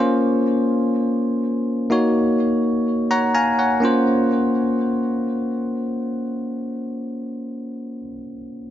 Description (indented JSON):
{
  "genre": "pop",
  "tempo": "free time",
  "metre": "none",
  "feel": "none",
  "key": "Bb minor",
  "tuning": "A4 = 442 Hz",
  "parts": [
    { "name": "bell-like tine electric piano", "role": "solo", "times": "0.0-8.7 s", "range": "Bb3 to Bb5", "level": "-19 LUFS", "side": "equal", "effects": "tape echo" }
  ],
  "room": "wet plate reverb, RT60 3.0 s",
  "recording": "nothing above 7.7 kHz",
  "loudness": "-18 LUFS",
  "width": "side -12 dB against mid",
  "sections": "0.0-3.8 A section; 3.8-7.7 B section",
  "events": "tine electric piano fill 2.9-3.8",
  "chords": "0.0 Bbmadd9; 1.9 Ebm7; 3.8 Bbmadd9"
}